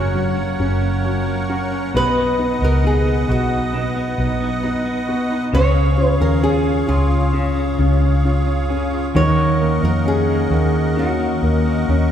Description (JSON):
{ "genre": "pop ballad", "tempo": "67 BPM", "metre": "4/4", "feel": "straight", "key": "Db mixolydian", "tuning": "A4 = 441 Hz", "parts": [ { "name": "flamenco guitar", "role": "melody", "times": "0.0-12.1 s", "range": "F4 to Db5", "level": "-22 LUFS", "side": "equal", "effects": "none" }, { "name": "dark upright piano", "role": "accompaniment", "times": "0.0-12.1 s", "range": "Eb3 to Db4", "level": "-22 LUFS", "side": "left 2 dB", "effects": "none" }, { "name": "musette accordion", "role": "sustained chords", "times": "0.0-12.1 s", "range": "Ab4 to Eb6", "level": "-26 LUFS", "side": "right 2 dB", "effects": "none" }, { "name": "electric guitar at the edge of break-up", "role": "arpeggios", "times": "0.0-12.1 s", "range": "Gb2 to Ab4", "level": "-26 LUFS", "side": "right 1 dB", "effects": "tremolo" }, { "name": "vintage muted fingered electric bass", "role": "bass", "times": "0.0-12.1 s", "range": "Gb1 to F2", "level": "-19 LUFS", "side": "equal", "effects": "none" } ], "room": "wet concert hall reverb, RT60 2.2 s", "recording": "recorded in a church or concert hall", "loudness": "-15 LUFS", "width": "side -9 dB against mid", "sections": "0.0-12.1 A section", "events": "none", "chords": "0.0 Gb; 1.9 Cb; 5.5 Db; 9.2 Ebm7" }